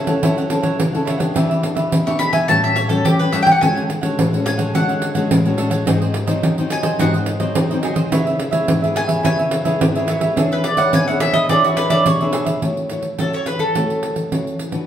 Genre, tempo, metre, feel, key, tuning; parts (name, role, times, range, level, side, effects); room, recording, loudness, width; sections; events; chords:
samba and choro; 106 BPM; 4/4; straight; A major; A4 = 440 Hz
mandolin; melody; 0.0-14.1 s; F#4 to C#6; -18 LUFS; equal
cavaquinho; accompaniment; 0.0-12.6 s; D4 to G5; -23 LUFS; right 2 dB
nylon-string guitar; accompaniment; 0.0-14.9 s; G#2 to C#5; -22 LUFS; left 2 dB
pandeiro; percussion; 0.1-14.9 s; -19 LUFS; right 1 dB
wet large studio reverb, RT60 1.3 s; band playing live in one room; -15 LUFS; side -10 dB against mid
0.0-12.6 A section; 12.6-14.9 B section
mandolin solo 0.0-12.6
0.0 F#m7; 1.4 Em7; 2.5 A6; 3.6 Dmaj7#11; 5.9 G#7; 8.1 C#m7; 10.4 E6; 12.6 A6